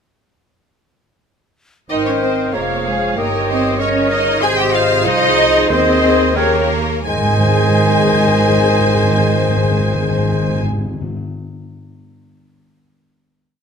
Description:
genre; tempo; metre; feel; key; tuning
quick classical-period movement for symphony orchestra; 85-96 BPM; 2/4; straight; Ab major; A4 = 440 Hz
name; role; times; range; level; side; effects
dark studio violin section; melody; 1.9-10.6 s; Ab4 to Ab5; -22 LUFS; left 2 dB; none
clear clarinet; second line; 1.9-10.6 s; G4 to Bb4; -25 LUFS; left 2 dB; none
concert flute; second line; 1.9-10.6 s; Eb5 to G5; -24 LUFS; left 2 dB; none
mellow oboe; second line; 1.9-10.6 s; Bb4 to Eb5; -25 LUFS; right 2 dB; none
rich studio violin section; second line; 1.9-10.6 s; Ab4 to Ab5; -22 LUFS; left 2 dB; none
dark bassoon; accompaniment; 1.9-10.6 s; C3 to F3; -22 LUFS; right 3 dB; none
rich studio viola section; accompaniment; 1.9-10.6 s; G4 to F5; -23 LUFS; equal; none
mellow French horn section; sustained chords; 1.9-10.6 s; G4 to F5; -24 LUFS; left 6 dB; none
rich studio cello section; bass; 1.9-10.6 s; Ab3 to Ab4; -21 LUFS; right 2 dB; none
rich studio double bass section; bass; 1.9-10.6 s; F1 to Eb2; -22 LUFS; right 5 dB; none
timpani; percussion; 5.7-11.2 s; Ab2 to Eb3; -20 LUFS; left 3 dB; none
room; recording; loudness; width
moderate recital hall reverb, RT60 1.5 s; close, detailed microphones; -13 LUFS; side -6 dB against mid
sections
1.9-7.1 A section; 7.1-9.8 final chord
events
slowing down 3.8-7.1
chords
1.9 Ab; 2.5 Db/F; 3.2 Eb7/G; 4.4 Ab; 5.1 Ab/C; 5.7 Ab/Eb; 6.4 Eb7; 7.1 Ab

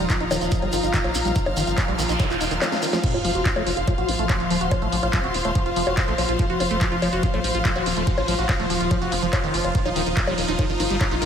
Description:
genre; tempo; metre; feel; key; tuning
psychedelic trance; 143 BPM; 4/4; straight; unclear; A4 = 440 Hz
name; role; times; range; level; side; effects
evolving wavetable pad; sustained chords; 0.0-11.3 s; F3 to F4; -27 LUFS; equal; phaser, built-in reverb, sidechain pumping
liquid acid bass; riff; 0.0-11.3 s; Eb3 to Gb4; -27 LUFS; equal; phaser, auto-pan, sidechain pumping, tape echo
round analog bass; bass; 0.0-11.3 s; Eb1 to Bb1; -29 LUFS; equal; tube saturation
shekere; percussion; 0.0-3.0 s; none; -34 LUFS; right 1 dB; none
rich symphonic string section; texture; 0.0-11.3 s; Eb4 to F6; -29 LUFS; left 3 dB; sidechain pumping
electronic kick drum; drums; 0.1-11.1 s; none; -23 LUFS; equal; none
techno drum kit; drums; 0.1-11.3 s; bongos, crash cymbal, handclaps, hi-hat, snare drum; -26 LUFS; left 1 dB; none
noise sweep and sub drop; sound effects; 1.8-4.7 s; none; -32 LUFS; right 2 dB; none
formant-sweep wobble bass; second line; 5.1-6.5 s; F3 to C4; -41 LUFS; left 2 dB; none
room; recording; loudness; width
moderate lush hall reverb, RT60 1.8 s, digital ambience; dreamy mix soaked in reverb; -20 LUFS; side -8 dB against mid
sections
0.0-3.0 A section; 3.0-11.3 B section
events
filter sweep on acid bass 0.0-3.0; noise sweep 1.8-3.0; drum fill 2.6-3.0; drop 3.0-11.3; impact 3.0-4.7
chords
0.0 Eb5; 3.0 F5; 9.7 Eb5

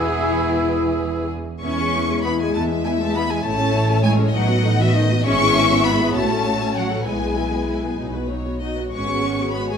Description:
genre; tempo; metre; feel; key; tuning
quick classical-period movement for symphony orchestra; 66 BPM (dotted quarters); 6/8; uneven beats, rubato; E major; A4 = 441 Hz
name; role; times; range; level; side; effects
rich chamber violin section; melody; 0.0-9.8 s; B3 to C#6; -24 LUFS; left 3 dB; none
clear clarinet; second line; 0.0-1.3 s; E4; -29 LUFS; left 4 dB; none
clear oboe; second line; 0.0-1.3 s; E5; -28 LUFS; right 3 dB; none
mellow flute section; second line; 0.0-1.3 s; G#4; -34 LUFS; left 6 dB; none
rich chamber violin section; second line; 0.0-9.8 s; G#4 to E5; -29 LUFS; left 5 dB; none
mellow bassoon; accompaniment; 0.0-1.3 s; E3; -28 LUFS; right 2 dB; none
rich symphonic viola section; accompaniment; 0.0-9.8 s; F#3 to A4; -26 LUFS; equal; none
mellow French horn section; sustained chords; 0.0-9.8 s; E3 to F#4; -26 LUFS; left 4 dB; none
warm trumpet; stabs; 0.0-1.3 s; G#4; -28 LUFS; right 3 dB; none
rich chamber double bass section; bass; 0.0-9.7 s; E1 to E2; -24 LUFS; right 2 dB; none
rich studio cello section; bass; 0.0-9.8 s; E2 to C#4; -26 LUFS; right 2 dB; none
room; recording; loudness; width
wet scoring stage reverb, RT60 1.6 s; minimal, uncompressed stereo recording; -17 LUFS; side -7 dB against mid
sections
0.0-1.6 A section; 1.6-9.8 B section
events
none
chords
0.0 E; 3.4 A; 4.3 B7/A; 5.3 E/G#; 6.1 F#m/A; 7.1 E/B; 8.0 B; 8.9 G#m7

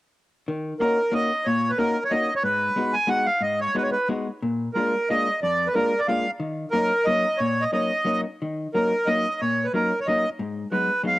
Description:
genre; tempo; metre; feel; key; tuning
musette; 183 BPM; 3/4; rubato; Eb minor; A4 = 440 Hz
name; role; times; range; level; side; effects
vintage hollow-body jazz guitar; accompaniment; 0.5-11.2 s; F2 to Gb4; -26 LUFS; left 2 dB; cassette tape
accordion; melody; 0.8-11.2 s; Bb4 to Ab5; -22 LUFS; right 1 dB; cassette tape
room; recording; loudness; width
light reverb, small room ambience; home recording on cassette; -21 LUFS; side -17 dB against mid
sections
0.5-8.4 A section; 8.4-11.2 A section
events
none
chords
0.5 Ebm7; 2.4 Abm7; 4.4 Bb7; 6.4 Ebm7; 10.4 Abm7

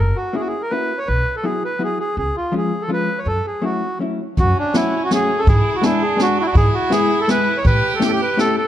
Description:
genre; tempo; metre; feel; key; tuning
musette waltz; 164 BPM; 3/4; straight; F# minor; A4 = 438 Hz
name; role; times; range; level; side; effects
accordion; melody; 0.0-8.7 s; D4 to C#5; -20 LUFS; equal; none
upright bass; bass; 0.0-7.8 s; F#1 to A2; -17 LUFS; equal; none
vintage hollow-body jazz guitar; accompaniment; 0.3-8.6 s; E#3 to G#4; -22 LUFS; left 3 dB; none
clear violin; second line; 4.4-8.5 s; C#4 to G4; -25 LUFS; right 6 dB; slapback echo
jazz brush drum kit; drums; 4.4-8.5 s; hi-hat, kick drum, snare drum; -21 LUFS; equal; none
room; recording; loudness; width
light reverb; dark, warm production; -16 LUFS; side -11 dB against mid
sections
0.0-4.4 A section; 4.4-8.7 A section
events
none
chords
0.0 F#7; 1.1 Bsus4; 2.2 C#; 3.3 F#m7; 4.4 F#m; 5.5 G#dim; 6.6 E/G#; 7.6 A7

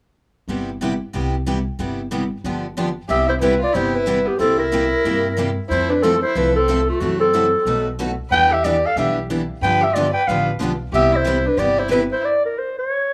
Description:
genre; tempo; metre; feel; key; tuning
acoustic string swing (jazz manouche); 184 BPM; 4/4; swing 61% on 8ths; C major; A4 = 440 Hz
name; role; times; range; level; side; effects
picked steel-string acoustic guitar; accompaniment; 0.5-12.0 s; B2 to A4; -27 LUFS; equal; none
picked steel-string acoustic guitar; accompaniment; 0.5-12.0 s; B2 to B4; -31 LUFS; equal; none
upright bass; bass; 0.5-12.1 s; G1 to G2; -29 LUFS; equal; none
growling clarinet; melody; 3.1-13.1 s; F4 to G5; -20 LUFS; equal; slapback echo
warm violin; second line; 3.1-12.2 s; A3 to B4; -28 LUFS; equal; none
room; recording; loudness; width
small room ambience; rough home demo mix; -19 LUFS; mono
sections
0.5-3.1 A section; 3.1-13.1 B section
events
stop 12.2-13.1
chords
0.5 Cmaj7/G; 2.4 G7; 3.1 Cmaj7; 4.4 C7; 5.7 Fmaj7; 7.0 F#m7b5; 7.7 B7; 8.3 Em7; 9.6 G7; 10.9 Cmaj7; 12.2 N.C.

